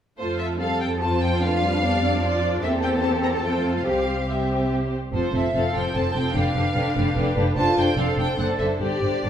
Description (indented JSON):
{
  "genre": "quick classical-period movement for string orchestra",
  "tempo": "147 BPM",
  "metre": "3/4",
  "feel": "straight",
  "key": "F major",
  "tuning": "A4 = 441 Hz",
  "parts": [
    { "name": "rich studio violin section", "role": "melody", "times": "0.2-9.3 s", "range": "C5 to Bb5", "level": "-28 LUFS", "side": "left 1 dB", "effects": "none" },
    { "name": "warm symphonic violin section", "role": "second line", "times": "0.2-9.3 s", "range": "D4 to D5", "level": "-27 LUFS", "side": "left 1 dB", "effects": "none" },
    { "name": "rich studio viola section", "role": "accompaniment", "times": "0.2-9.3 s", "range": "D3 to F4", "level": "-26 LUFS", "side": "equal", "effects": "none" },
    { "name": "rich studio double bass section", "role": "bass", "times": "0.2-9.3 s", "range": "F1 to F2", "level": "-26 LUFS", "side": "right 1 dB", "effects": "none" },
    { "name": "rich studio cello section", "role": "bass", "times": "0.6-9.3 s", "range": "C4 to A4", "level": "-29 LUFS", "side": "equal", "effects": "none" }
  ],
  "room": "wet stone room reverb, RT60 0.9 s",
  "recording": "heard from further back in the room",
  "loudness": "-20 LUFS",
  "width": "side -9 dB against mid",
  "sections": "0.2-9.3 A section",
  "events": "none",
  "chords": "0.2 F; 1.4 G7/F; 2.6 C7/E; 3.4 F; 3.9 C; 5.1 F; 6.3 G7/F; 7.6 Dm7/F; 8.4 D7/F#"
}